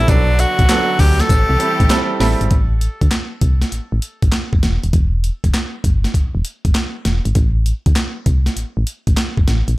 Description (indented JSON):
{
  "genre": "R&B, new jack swing",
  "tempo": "99 BPM",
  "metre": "4/4",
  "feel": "swing 67% on 16ths",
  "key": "A dorian",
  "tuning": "A4 = 440 Hz",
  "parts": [
    { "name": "edgy tenor saxophone", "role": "melody", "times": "0.0-2.2 s", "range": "D4 to A4", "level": "-20 LUFS", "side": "equal", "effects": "tape echo" },
    { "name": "warm grand piano", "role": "accompaniment", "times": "0.0-2.5 s", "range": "F#3 to A4", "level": "-21 LUFS", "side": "right 4 dB", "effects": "none" },
    { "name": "clear studio string section", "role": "sustained chords", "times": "0.0-2.5 s", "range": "D3 to G4", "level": "-27 LUFS", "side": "left 1 dB", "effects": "none" },
    { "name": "solid FM bass", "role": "bass", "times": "0.0-9.8 s", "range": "D#1 to D2", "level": "-17 LUFS", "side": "equal", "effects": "none" },
    { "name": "breakbeat sampler-style drum kit", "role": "drums", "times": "0.1-9.8 s", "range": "handclaps, hi-hat, kick drum, snare drum, tambourine", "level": "-16 LUFS", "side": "equal", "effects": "none" },
    { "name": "cowbell", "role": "percussion", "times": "0.1-2.1 s", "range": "none", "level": "-36 LUFS", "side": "left 4 dB", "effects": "none" }
  ],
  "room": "small room ambience",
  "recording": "none",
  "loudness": "-14 LUFS",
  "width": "side -19 dB against mid",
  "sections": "0.0-2.5 A section; 2.5-9.8 B section",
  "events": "none",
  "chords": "0.1 Bm7; 1.3 Am7; 2.5 Am; 4.9 Em; 7.4 N.C."
}